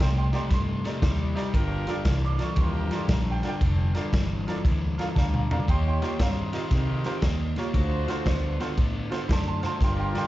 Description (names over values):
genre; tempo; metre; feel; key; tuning
electric blues shuffle; 116 BPM; 4/4; swing 65% on 8ths; G minor; A4 = 442 Hz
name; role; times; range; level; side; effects
clear grand piano; accompaniment; 0.0-10.3 s; Eb4 to D6; -33 LUFS; right 4 dB; none
overdriven semi-hollow guitar; riff; 0.0-10.3 s; G2 to C4; -30 LUFS; left 2 dB; none
vintage muted fingered electric bass; bass; 0.0-10.1 s; F1 to C3; -27 LUFS; equal; none
crunchy breakbeat drum kit; drums; 0.0-10.2 s; kick drum, ride cymbal, snare drum, toms; -27 LUFS; equal; none
mellow horn section; stabs; 1.5-10.3 s; Eb4 to Db5; -35 LUFS; right 1 dB; none
room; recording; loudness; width
studio ambience; live gig heard through the venue's PA, club reverb, nothing above 7.8 kHz; -23 LUFS; side -16 dB against mid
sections
0.0-10.3 A section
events
drum fill 5.2-5.7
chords
0.0 Cm7; 1.5 Gm7; 5.7 Eb7; 7.7 D7#9